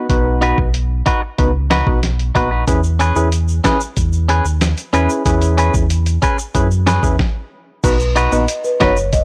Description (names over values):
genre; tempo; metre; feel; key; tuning
dancehall; 93 BPM; 4/4; straight; B major; A4 = 437 Hz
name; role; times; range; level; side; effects
percussive organ stab; accompaniment; 0.0-8.9 s; B3 to B4; -22 LUFS; equal; chorus
sub bass with octave; bass; 0.1-9.2 s; F#1 to F#2; -19 LUFS; equal; none
dusty soul sampler-style drum kit; drums; 0.1-9.2 s; crash cymbal, hi-hat, kick drum, rim click, snare drum; -21 LUFS; equal; overdrive
clean electric guitar; arpeggios; 0.4-9.0 s; C#4 to B4; -20 LUFS; equal; none
tube shaker; percussion; 2.7-9.2 s; none; -33 LUFS; equal; none
marimba with medium mallets; melody; 7.8-9.2 s; B4 to D#5; -20 LUFS; equal; none
room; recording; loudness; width
little or no reverb; dry, gritty hardware recording, cassette tape; -16 LUFS; mono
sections
0.0-7.8 A section; 7.8-9.2 B section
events
stop 7.2-7.8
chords
0.0 B; 2.7 E6; 7.8 B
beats
| 0.10 0.74 1.39 2.03 | 2.68 3.32 3.97 4.61 | 5.26 5.90 6.55 7.19 | 7.84 8.48 9.13